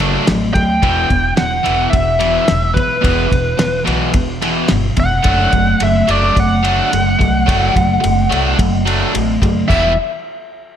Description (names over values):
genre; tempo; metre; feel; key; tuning
indie rock; 108 BPM; 4/4; straight; E minor; A4 = 439 Hz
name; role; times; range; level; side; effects
crunchy overdriven guitar; riff; 0.0-9.9 s; E2 to E4; -17 LUFS; equal; slapback echo
upright bass; bass; 0.0-10.0 s; E1 to D2; -19 LUFS; equal; none
cloth-damped thuddy drum kit; drums; 0.0-9.8 s; crash cymbal, kick drum, ride cymbal, snare drum; -19 LUFS; equal; none
biting lead guitar; melody; 0.5-9.9 s; B4 to G5; -17 LUFS; equal; overdrive, slapback echo, analog delay
room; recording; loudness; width
moderate lush hall reverb, RT60 1.8 s, small room ambience; big arena sound; -12 LUFS; side -9 dB against mid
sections
0.0-9.7 A section; 9.7-10.8 B section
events
none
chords
0.0 D/F#; 0.8 E5; 5.3 D/F#; 9.7 Em